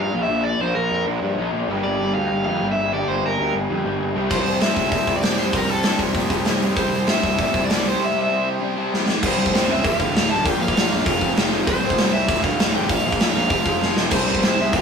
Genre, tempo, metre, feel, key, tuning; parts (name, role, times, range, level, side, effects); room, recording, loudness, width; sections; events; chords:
punk rock; 195 BPM; 4/4; straight; A4 = 439 Hz
overdriven electric guitar; melody; 0.0-14.8 s; A4 to A5; -23 LUFS; equal
raw garage guitar; riff; 0.0-14.8 s; D2 to C4; -26 LUFS; left 3 dB; overdrive
raw garage guitar; riff; 0.0-14.8 s; D2 to C5; -27 LUFS; right 3 dB; overdrive
fuzz picked electric bass; bass; 0.0-14.8 s; D1 to Bb2; -27 LUFS; equal; overdrive
tight distorted guitar; riff; 4.3-14.8 s; D2 to C4; -30 LUFS; equal
big rock drum kit; drums; 4.3-14.8 s; crash cymbal, hi-hat, kick drum, snare drum, splash cymbal; -20 LUFS; equal
moderate small room reverb, RT60 0.5 s; rough rehearsal-room recording; -18 LUFS; side -6 dB against mid
0.0-9.2 A section; 9.2-14.8 B section
drum fill 8.9-9.2, 13.8-14.1
0.0 Bb; 1.7 Gm; 4.2 C; 9.2 C5; 9.8 Dm; 10.5 Bb5; 11.1 F5; 11.7 C5; 12.3 Dm; 12.9 Bb5; 13.5 F5; 14.1 C5